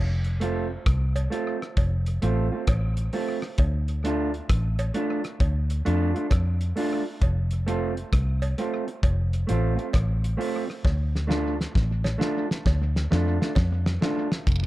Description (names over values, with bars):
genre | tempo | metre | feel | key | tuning
roots reggae | 66 BPM | 4/4 | swing 65% on 16ths | unclear | A4 = 442 Hz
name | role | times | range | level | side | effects
vintage muted fingered electric bass | bass | 0.0-14.7 s | F1 to F2 | -24 LUFS | equal | none
cloth-damped thuddy drum kit | drums | 0.2-14.7 s | hi-hat, kick drum, rim click, snare drum | -25 LUFS | equal | none
mellow electric guitar | accompaniment | 0.4-14.3 s | A3 to F4 | -29 LUFS | right 2 dB | tape echo
cowbell and jawbone-type rattle | percussion | 1.2-14.7 s | none | -39 LUFS | right 2 dB | none
room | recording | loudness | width
studio ambience | dark, warm production | -23 LUFS | side -16 dB against mid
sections
0.0-14.5 A section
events
drum fill 10.8-14.5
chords
0.0 F; 3.6 Dm; 7.2 F; 10.8 Dm